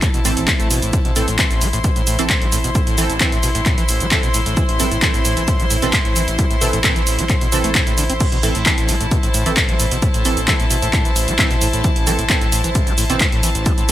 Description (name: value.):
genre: driving peak-time techno.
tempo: 132 BPM.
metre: 4/4.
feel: straight.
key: A minor.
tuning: A4 = 440 Hz.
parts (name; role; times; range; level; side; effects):
overdriven acid bass; riff; 0.0-13.9 s; A1 to C4; -24 LUFS; equal; distortion, wide subtle chorus, sidechain pumping, digital delay.
saturated sub bass; bass; 0.0-13.9 s; A1; -23 LUFS; equal; tube saturation, sidechain pumping, low-pass filter.
electronic kick drum; drums; 0.0-13.8 s; none; -19 LUFS; equal; none.
punchy analog drum machine; drums; 0.0-13.9 s; crash cymbal, handclaps, hi-hat, shaker; -20 LUFS; equal; sidechain pumping on hats, sidechain pumping on cymbals, sidechain pumping on perc.
bright chamber string section; texture; 0.0-13.9 s; E4 to C6; -23 LUFS; equal; sidechain pumping.
wavetable chord stab; stabs; 0.3-13.9 s; E3 to A4; -25 LUFS; right 3 dB; analog chorus, sidechain pumping, digital delay.
room: light reverb.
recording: bright 1980s-style digital production.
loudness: -14 LUFS.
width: side -13 dB against mid.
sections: 0.0-13.9 A section.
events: none.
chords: 0.0 Am.